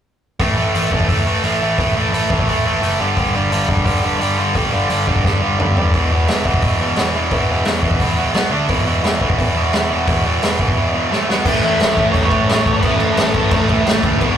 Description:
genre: punk rock.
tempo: 174 BPM.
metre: 4/4.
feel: straight.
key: A major.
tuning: A4 = 439 Hz.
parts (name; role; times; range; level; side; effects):
cranked stack guitar; riff; 0.4-14.4 s; E2 to D4; -22 LUFS; left 5 dB; overdrive.
tight distorted guitar; riff; 0.4-14.4 s; E2 to D4; -18 LUFS; right 4 dB; distortion.
overdriven picked electric bass; bass; 0.4-14.3 s; E1 to A2; -25 LUFS; equal; none.
raw garage drum kit; drums; 0.4-14.3 s; crash cymbal, hi-hat, kick drum, snare drum, toms; -18 LUFS; equal; none.
crunchy overdriven guitar; riff; 11.5-14.4 s; A2 to E4; -23 LUFS; left 1 dB; none.
nasal lead guitar with a parked wah; melody; 11.6-14.0 s; A3 to E5; -20 LUFS; equal; overdrive, ping-pong delay.
room: moderate booth ambience, RT60 0.2 s.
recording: rough rehearsal-room recording, tube saturation.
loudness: -14 LUFS.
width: side -9 dB against mid.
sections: 0.4-11.5 A section; 11.5-14.4 B section.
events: drum fill 5.2-5.9, 11.1-11.5.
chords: 0.4 A5; 3.0 G5; 5.9 E5; 8.4 B5; 8.5 D5; 8.7 E5; 11.1 A5; 11.3 B5; 11.5 A.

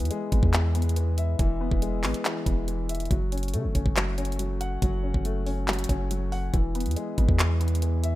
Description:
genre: hip hop, trap.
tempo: 140 BPM.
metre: 4/4.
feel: half-time.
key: unclear.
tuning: A4 = 440 Hz.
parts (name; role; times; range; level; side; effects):
dark baby grand piano; accompaniment; 0.0-8.2 s; E3 to F#5; -31 LUFS; left 3 dB; low-pass filter.
long sustained 808-style bass; bass; 0.0-8.2 s; E1 to C#3; -26 LUFS; equal; none.
trap drum kit; drums; 0.0-8.1 s; handclaps, hi-hat, kick drum; -27 LUFS; equal; none.
room: digital ambience.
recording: rough home demo mix.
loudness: -24 LUFS.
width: side -16 dB against mid.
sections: 0.0-8.2 A section.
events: none.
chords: 0.0 E; 3.1 F#m; 6.5 E.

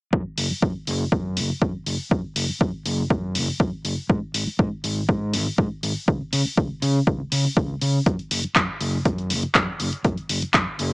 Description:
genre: filtered disco house.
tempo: 121 BPM.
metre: 4/4.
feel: straight.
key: unclear.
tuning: A4 = 440 Hz.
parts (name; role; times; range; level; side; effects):
overdriven fingered electric bass; bass; 0.1-10.9 s; F#1 to C#3; -25 LUFS; equal; sidechain pumping, low-pass filter.
electronic kick drum; drums; 0.1-10.6 s; none; -21 LUFS; equal; none.
punchy analog drum machine; drums; 0.4-10.9 s; handclaps, hi-hat; -24 LUFS; left 1 dB; sidechain pumping on hats.
room: little or no reverb.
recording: small speaker sound.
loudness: -21 LUFS.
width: side -27 dB against mid.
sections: 0.1-10.9 A section.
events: none.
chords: none.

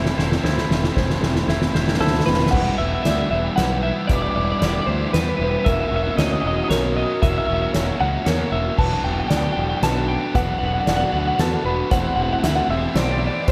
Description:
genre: post-rock.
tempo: 115 BPM.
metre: 3/4.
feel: straight.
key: E minor.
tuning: A4 = 441 Hz.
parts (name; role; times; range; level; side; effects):
analog string pad; sustained chords; 0.2-13.5 s; E4 to D6; -39 LUFS; equal; none.
felt-muted upright piano; arpeggios; 0.0-13.5 s; A#4 to E5; -33 LUFS; equal; slapback echo, tape echo.
twangy electric guitar; arpeggios; 0.0-2.5 s; E2 to C5; -33 LUFS; equal; spring reverb, slapback echo, tape echo.
distorted electric guitar; riff; 0.0-13.5 s; B2 to G4; -32 LUFS; equal; distortion, slapback echo.
overdriven semi-hollow guitar; riff; 0.0-13.5 s; B2 to F#4; -30 LUFS; equal; phaser, slapback echo.
fuzz picked electric bass; bass; 0.0-13.5 s; E1 to E2; -26 LUFS; equal; overdrive.
soft-mallet drum kit; drums; 0.1-13.5 s; crash cymbal, hi-hat, kick drum, snare drum; -26 LUFS; equal; none.
twelve-string electric guitar; melody; 2.0-13.5 s; A4 to A5; -26 LUFS; equal; slapback echo, tape echo.
room: moderate concert hall reverb, RT60 2.6 s.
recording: big arena sound.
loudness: -20 LUFS.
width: mono.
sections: 0.0-2.5 A section; 2.5-13.5 B section.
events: build-up 0.0-2.5; drum fill 0.0-2.5.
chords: 0.0 Am7/E; 2.5 Em7; 5.7 F#7/E; 8.8 Bm7/E; 11.9 Am7/E.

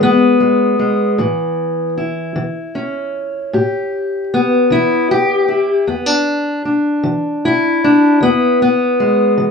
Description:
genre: acoustic country blues, solo or duo.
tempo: 51 BPM (dotted quarters).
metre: 12/8.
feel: straight.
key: unclear.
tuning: A4 = 440 Hz.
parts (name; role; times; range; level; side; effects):
fingerpicked steel-string acoustic guitar; solo; 0.0-9.5 s; E2 to G4; -13 LUFS; left 1 dB; none.
room: light reverb.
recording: none.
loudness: -13 LUFS.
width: side -5 dB against mid.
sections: 0.0-9.5 A section.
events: none.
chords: 0.0 E; 1.2 A7; 5.9 E7.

